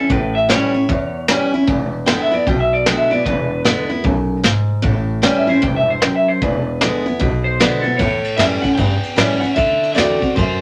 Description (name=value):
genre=rockabilly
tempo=152 BPM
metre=4/4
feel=swing 62% on 8ths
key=A mixolydian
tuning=A4 = 440 Hz
part: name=electric guitar through a small old amp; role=melody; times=0.0-10.6 s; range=A4 to G5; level=-22 LUFS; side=equal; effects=none
part: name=picked steel-string acoustic guitar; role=accompaniment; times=0.0-10.6 s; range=E2 to F#4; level=-20 LUFS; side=equal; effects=none
part: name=upright bass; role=bass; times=0.1-10.6 s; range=E1 to A2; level=-25 LUFS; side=equal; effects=none
part: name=vintage brush drum kit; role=drums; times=0.1-10.5 s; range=hi-hat, kick drum, ride cymbal, snare drum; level=-21 LUFS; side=equal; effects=none
room=wet small room reverb, RT60 0.5 s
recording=none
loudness=-17 LUFS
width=mono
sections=0.0-8.0 A section; 8.0-10.6 B section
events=clean electric guitar solo 0.0-8.0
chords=0.0 A7; 1.7 E7; 4.8 A7; 6.4 E7; 8.0 A7; 9.6 D7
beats=| 0.09 0.49 0.88 1.28 | 1.68 2.07 2.47 2.86 | 3.26 3.65 4.05 4.44 | 4.84 5.23 5.63 6.02 | 6.42 6.81 7.21 7.60 | 8.00 8.39 8.79 9.18 | 9.58 9.97 10.37